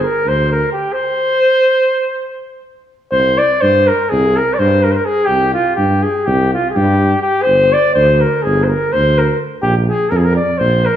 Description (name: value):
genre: balkan folk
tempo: 249 BPM (eighths)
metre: 9/8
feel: straight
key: unclear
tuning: A4 = 440 Hz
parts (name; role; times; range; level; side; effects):
- warm flugelhorn; melody; 0.0-11.0 s; F4 to D5; -13 LUFS; equal; none
- mellow tuba; bass; 0.0-10.9 s; G1 to G2; -16 LUFS; equal; none
room: wet recital hall reverb, RT60 1.4 s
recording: recorded in a church or concert hall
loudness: -12 LUFS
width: side -10 dB against mid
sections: 0.0-3.1 A section; 3.1-11.0 A section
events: none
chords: 0.0 G5; 1.0 N.C.; 3.1 C5; 7.5 G5; 9.6 Bb5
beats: 0.23 0.47 0.71 | 0.95 1.20 1.44 1.68 1.92 2.16 2.40 2.64 2.88 | 3.13 3.37 3.61 3.85 4.09 4.33 4.57 4.82 5.06 | 5.30 5.54 5.78 6.02 6.26 6.50 6.74 6.98 7.22 | 7.46 7.71 7.95 8.19 8.43 8.67 8.91 9.15 9.39 | 9.63 9.87 10.11 10.35 10.59 10.83